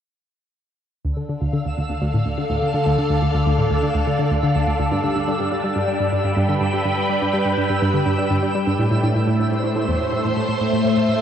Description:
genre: ambient, sequencer-driven space music.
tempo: 124 BPM.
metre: 4/4.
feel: straight.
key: D dorian.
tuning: A4 = 440 Hz.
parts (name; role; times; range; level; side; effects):
phased string machine; sustained chords; 1.0-11.2 s; A2 to G5; -20 LUFS; equal; ensemble chorus, phaser.
analog pluck; riff; 1.0-11.1 s; D2 to G3; -21 LUFS; equal; chorus, tape echo.
twinkling granular texture; texture; 1.6-11.2 s; E6; -32 LUFS; right 3 dB; built-in reverb.
room: wet huge ambient reverb, RT60 7.8 s.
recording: worn, warbling old tape, cassette tape, warbly pitch drift, nothing above 10.4 kHz.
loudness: -18 LUFS.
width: side -9 dB against mid.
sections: 1.0-11.2 A section.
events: filter sweep on synth arpeggio sound 1.0-11.2.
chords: 1.0 Dm; 4.9 G; 8.8 Am.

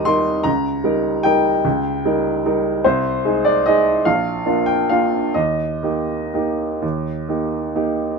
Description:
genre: classical, piano waltz.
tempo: 116-160 BPM.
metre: 3/4.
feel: rubato.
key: Eb major.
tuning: A4 = 440 Hz.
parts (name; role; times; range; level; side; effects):
clear upright piano; solo; 0.0-8.2 s; Bb1 to Eb6; -16 LUFS; equal; none.
room: light reverb.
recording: minimal, uncompressed stereo recording.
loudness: -16 LUFS.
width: side -4 dB against mid.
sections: 0.0-8.2 A section.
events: none.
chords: 0.5 Eb7/Db; 2.8 Ab/C; 4.0 Bb; 5.3 Eb.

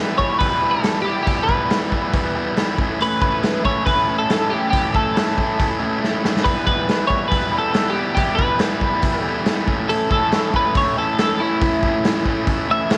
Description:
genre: indie rock.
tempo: 139 BPM.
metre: 4/4.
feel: straight.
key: E dorian.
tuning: A4 = 440 Hz.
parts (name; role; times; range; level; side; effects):
twelve-string electric guitar; melody; 0.0-13.0 s; E4 to E5; -23 LUFS; equal; analog chorus, slapback echo.
fuzz guitar; riff; 0.0-13.0 s; A2 to E4; -24 LUFS; equal; distortion.
fuzz fingered electric bass; bass; 0.0-13.0 s; none; barely audible; none; none.
raw garage drum kit; drums; 0.2-13.0 s; hi-hat, kick drum, snare drum; -24 LUFS; equal; none.
room: light reverb, small room ambience.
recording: none.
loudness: -19 LUFS.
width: mono.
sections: 0.0-13.0 A section.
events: drum fill 6.0-6.5.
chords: 0.0 Em; 2.8 A; 6.5 Em; 9.7 A.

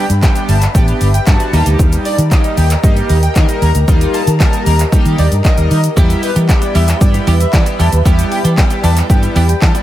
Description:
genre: dance-pop.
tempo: 115 BPM.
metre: 4/4.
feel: straight.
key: unclear.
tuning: A4 = 443 Hz.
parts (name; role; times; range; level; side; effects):
airy dreamy lead; melody; 0.0-9.8 s; B4 to Bb5; -22 LUFS; equal; chorus, sidechain pumping, diffuse ambient delay.
chorused polysynth; accompaniment; 0.0-9.8 s; G3 to Bb4; -20 LUFS; equal; sidechain pumping.
glassy FM pad; sustained chords; 0.0-9.8 s; G4 to B5; -22 LUFS; left 1 dB; ensemble chorus, built-in reverb, phaser, sidechain pumping.
downlifter; sound effects; 0.0-1.8 s; none; barely audible; none; none.
vintage muted fingered electric bass; bass; 0.1-9.7 s; G1 to E3; -12 LUFS; equal; sidechain pumping.
deep house drum kit; drums; 0.1-9.8 s; handclaps, hi-hat, kick drum, shaker; -13 LUFS; equal; none.
semi-hollow electric guitar; riff; 6.0-9.8 s; G3 to G4; -23 LUFS; right 5 dB; lush chorus.
room: digital ambience.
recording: none.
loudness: -10 LUFS.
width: side -13 dB against mid.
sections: 0.0-9.8 A section.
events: none.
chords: 0.0 G; 1.5 Eb; 6.0 Em.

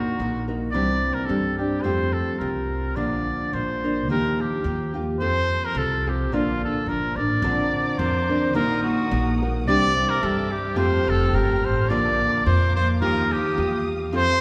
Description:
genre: mexican folk, mariachi.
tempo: 108 BPM.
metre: 2/4.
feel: swing 54% on 8ths.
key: Bb major.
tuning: A4 = 440 Hz.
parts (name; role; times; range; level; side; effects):
clear trumpet; melody; 0.0-14.4 s; F4 to D5; -27 LUFS; equal; none.
nylon-string guitar; accompaniment; 0.0-14.4 s; Bb2 to Bb4; -27 LUFS; equal; none.
upright bass; bass; 0.2-14.4 s; F1 to G2; -29 LUFS; equal; none.
muted studio violin section; sustained chords; 7.4-14.4 s; G4 to F6; -39 LUFS; equal; none.
room: wet concert hall reverb, RT60 2.4 s.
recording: recorded in a church or concert hall.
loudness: -23 LUFS.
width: mono.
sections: 0.0-7.4 A section; 7.4-14.4 A section.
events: none.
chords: 0.0 Ebm/Bb; 0.7 Cadd9; 1.8 Fadd9; 3.0 Bb; 4.1 Ebadd9; 5.2 F; 6.3 Bb; 7.4 Bbadd9; 8.6 Ebm/Bb; 9.7 Cadd9; 10.8 Fadd9; 11.9 Bb; 13.0 Ebadd9.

